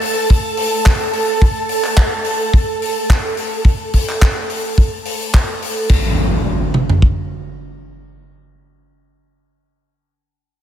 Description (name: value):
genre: nu-disco, nu disco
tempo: 107 BPM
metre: 4/4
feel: swing 55% on 16ths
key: unclear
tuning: A4 = 441 Hz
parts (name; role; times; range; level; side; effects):
- string machine, full ensemble; sustained chords; 0.0-5.9 s; A4 to A5; -20 LUFS; right 2 dB; ensemble chorus, sidechain pumping
- tight funk drum kit; drums; 0.0-6.0 s; crash cymbal, handclaps, hi-hat; -22 LUFS; left 2 dB; none
- tight funk drum kit; drums; 0.3-7.2 s; kick drum, toms; -11 LUFS; equal; none
- impact; sound effects; 5.9-9.6 s; none; -19 LUFS; equal; none
room: moderate lush hall reverb, RT60 2.4 s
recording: dreamy mix soaked in reverb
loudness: -14 LUFS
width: side -11 dB against mid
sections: 0.0-5.9 A section; 5.9-8.1 B section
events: filter sweep on string machine 0.0-5.9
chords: none